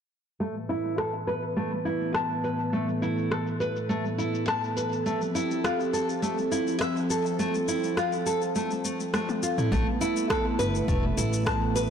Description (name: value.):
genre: organic downtempo.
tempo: 103 BPM.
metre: 4/4.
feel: straight.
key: A minor.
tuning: A4 = 440 Hz.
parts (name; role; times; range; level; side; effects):
warm analog pad; sustained chords; 0.4-11.9 s; A2 to B4; -30 LUFS; right 1 dB; chorus, sidechain pumping.
nylon-string guitar; arpeggios; 0.4-11.9 s; A3 to A5; -28 LUFS; equal; low-pass filter, tape echo.
organic electronic drum kit; drums; 0.4-11.9 s; rim click, shaker, toms; -33 LUFS; left 1 dB; low-pass filter on perc, soft clipping on snare, low-pass filter on snare, low-pass filter on toms.
upright bass; bass; 9.7-11.9 s; E1 to A1; -28 LUFS; equal; sidechain pumping.
electronic kick drum; drums; 9.7-11.6 s; none; -30 LUFS; equal; overdrive.
room: moderate lush hall reverb, RT60 2.6 s.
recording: blown-out, overdriven recording, overdrive.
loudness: -25 LUFS.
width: side -8 dB against mid.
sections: 0.4-9.7 A section; 9.7-11.9 B section.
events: filter sweep on drum 0.4-9.7; filter sweep on nylon-string guitar 0.4-9.7; filter sweep on analog synth pad 0.4-9.7; drum fill 9.1-9.7.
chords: 0.4 Asus2; 5.1 Fmaj7; 9.7 Asus2.